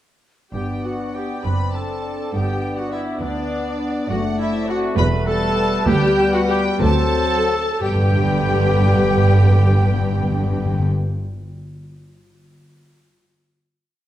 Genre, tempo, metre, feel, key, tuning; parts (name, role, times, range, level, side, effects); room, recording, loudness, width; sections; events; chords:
quick classical-period movement for symphony orchestra; 58-69 BPM (dotted quarters); 6/8; rubato; G major; A4 = 440 Hz
rich studio violin section; melody; 0.5-10.9 s; D5 to B5; -30 LUFS; equal
bright concert flute; second line; 0.5-10.9 s; D5 to B5; -32 LUFS; equal
mellow clarinet; second line; 0.5-10.9 s; F#3 to B4; -28 LUFS; left 1 dB
mellow cor anglais; second line; 0.5-10.9 s; B4 to G5; -33 LUFS; right 2 dB
clear bassoon; accompaniment; 0.5-10.9 s; D3 to C4; -30 LUFS; equal
rich chamber viola section; accompaniment; 0.5-10.9 s; D4 to B4; -25 LUFS; left 2 dB
mellow French horn section; sustained chords; 0.5-10.9 s; F#3 to D4; -27 LUFS; left 4 dB
mellow trumpet section; stabs; 0.5-10.9 s; D4 to B4; -28 LUFS; equal
clear studio double bass section; bass; 0.5-10.9 s; E1 to D2; -23 LUFS; right 2 dB
rich studio cello section; bass; 0.5-10.9 s; D2 to G2; -23 LUFS; right 2 dB
rich chamber violin section; second line; 1.1-10.9 s; B4 to G5; -32 LUFS; left 4 dB
timpani; percussion; 5.9-10.9 s; G2 to D3; -21 LUFS; left 2 dB
wet recital hall reverb, RT60 1.3 s; dark, warm production; -16 LUFS; side -12 dB against mid
0.5-7.8 A section; 7.8-11.7 final chord
slowing down 3.2-7.8
0.5 G; 1.4 D7/F#; 2.3 G; 4.1 D/F#; 5.0 Em; 5.9 G/D; 6.8 D7; 7.8 G